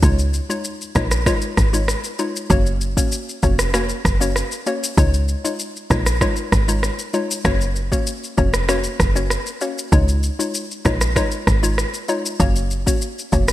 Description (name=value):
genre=afrobeats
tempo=97 BPM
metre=4/4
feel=straight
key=Db major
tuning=A4 = 440 Hz
part: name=hollow square pluck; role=accompaniment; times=0.0-13.5 s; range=Ab3 to Db5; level=-24 LUFS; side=left 2 dB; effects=chorus
part: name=woody log drum bass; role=bass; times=0.0-13.5 s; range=F1 to Db2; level=-19 LUFS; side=equal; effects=none
part: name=afro-pop drum kit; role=drums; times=0.0-13.5 s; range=kick drum, rim click, shaker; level=-20 LUFS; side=equal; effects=gated reverb
room=light reverb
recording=bright 1980s-style digital production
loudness=-17 LUFS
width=side -14 dB against mid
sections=0.0-13.5 A section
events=none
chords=0.0 Dbadd9; 2.5 Gb; 5.0 Dbadd9; 7.5 Gb; 9.9 Dbadd9; 12.4 Gb